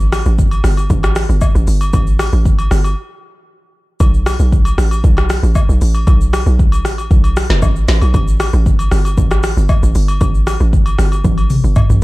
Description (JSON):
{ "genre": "amapiano", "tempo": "116 BPM", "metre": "4/4", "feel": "straight", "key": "unclear", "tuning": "A4 = 437 Hz", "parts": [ { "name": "hollow log drum bass", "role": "bass", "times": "0.0-12.0 s", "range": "F#1 to B1", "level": "-13 LUFS", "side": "equal", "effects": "none" }, { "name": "afro-pop drum kit", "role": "drums", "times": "0.0-12.0 s", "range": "hi-hat, kick drum, rim click, shaker, snare drum, toms", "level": "-14 LUFS", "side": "equal", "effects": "none" }, { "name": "agogo bells and woodblock", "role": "percussion", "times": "0.1-11.9 s", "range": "none", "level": "-26 LUFS", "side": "left 2 dB", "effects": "none" } ], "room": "digital ambience", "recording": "dark, warm production", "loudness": "-11 LUFS", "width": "side -20 dB against mid", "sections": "0.0-12.0 A section", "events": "break 3.0-4.0; drum fill 11.2-12.0", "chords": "none" }